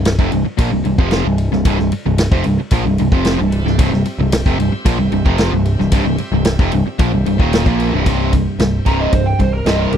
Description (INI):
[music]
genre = classic rock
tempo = 112 BPM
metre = 4/4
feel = straight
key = C major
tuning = A4 = 441 Hz
[part]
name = cranked stack guitar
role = riff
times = 0.0-10.0 s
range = C2 to Bb3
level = -20 LUFS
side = left 12 dB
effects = overdrive
[part]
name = distorted electric guitar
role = riff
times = 0.0-10.0 s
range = C2 to Bb3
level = -20 LUFS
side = right 12 dB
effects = overdrive
[part]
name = growling picked electric bass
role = bass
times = 0.0-10.0 s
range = C1 to Bb1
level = -18 LUFS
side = equal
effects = overdrive
[part]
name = vintage drum kit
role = drums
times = 0.1-10.0 s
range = kick drum, ride cymbal, snare drum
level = -17 LUFS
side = equal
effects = none
[part]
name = bright tonewheel organ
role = sustained chords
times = 3.5-10.0 s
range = A3 to E5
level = -31 LUFS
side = right 1 dB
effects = overdrive, slow rotary speaker
[part]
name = smooth overdriven lead guitar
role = melody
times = 8.9-10.0 s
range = G4 to Bb5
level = -20 LUFS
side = right 3 dB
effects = none
[sound]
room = studio ambience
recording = dry, close 1970s-style studio recording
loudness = -13 LUFS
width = side -9 dB against mid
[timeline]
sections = 0.0-8.1 A section; 8.1-10.0 B section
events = lead electric guitar solo 8.1-10.0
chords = 0.0 C